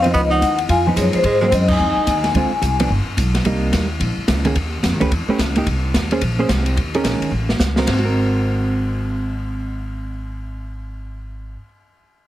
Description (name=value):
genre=jazz, small-group swing and bop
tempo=217 BPM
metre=4/4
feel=swing 61% on 8ths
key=Ab mixolydian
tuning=A4 = 439 Hz
part: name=vibraphone with medium mallets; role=melody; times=0.0-2.9 s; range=C5 to Ab5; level=-19 LUFS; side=left 4 dB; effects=none
part: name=breathy tenor saxophone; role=second line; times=0.0-2.3 s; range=Ab3 to F4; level=-21 LUFS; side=right 2 dB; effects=none
part: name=upright bass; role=bass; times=0.0-11.5 s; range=G1 to Ab2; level=-20 LUFS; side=equal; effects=none
part: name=open jazz drum kit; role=drums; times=0.0-8.0 s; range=crash cymbal, hi-hat, kick drum, ride cymbal, snare drum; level=-23 LUFS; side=equal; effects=none
part: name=hollow-body jazz guitar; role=accompaniment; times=0.1-11.7 s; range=D3 to C5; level=-22 LUFS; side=right 2 dB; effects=none
room=light reverb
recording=heavily compressed radio sound, multiband compression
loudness=-16 LUFS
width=side -14 dB against mid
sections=0.0-3.5 A section; 3.5-7.9 B section; 7.9-10.1 C section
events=band accent 1.7; drum fill 7.3-7.9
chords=0.1 Db9; 1.2 Ab7; 2.3 Dm7b5; 2.9 G; 3.5 Cm7; 4.0 Bbm7; 4.6 Db9; 5.1 A9; 5.7 Cm7; 6.2 Bbm9; 6.8 Eb7sus4; 7.3 A; 7.9 Ab9